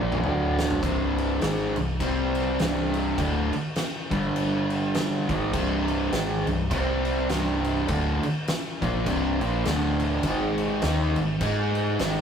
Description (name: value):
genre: stoner and doom metal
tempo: 102 BPM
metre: 4/4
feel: swing 58% on 8ths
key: C minor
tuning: A4 = 439 Hz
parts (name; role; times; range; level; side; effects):
- fuzz guitar; riff; 0.0-12.2 s; C2 to Ab4; -25 LUFS; equal; distortion
- hollow-body short-scale fingered electric bass; bass; 0.0-12.2 s; C1 to Ab2; -29 LUFS; equal; overdrive
- oversized low-tuned drum kit; drums; 0.1-12.2 s; crash cymbal, kick drum, snare drum, toms; -30 LUFS; equal; none
room: light reverb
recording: rough rehearsal-room recording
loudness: -23 LUFS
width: side -7 dB against mid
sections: 0.8-12.2 A section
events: drum fill 0.0-0.8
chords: 0.2 D5; 0.8 C5; 4.1 G5; 5.2 Cm; 9.7 D5; 10.2 Ab5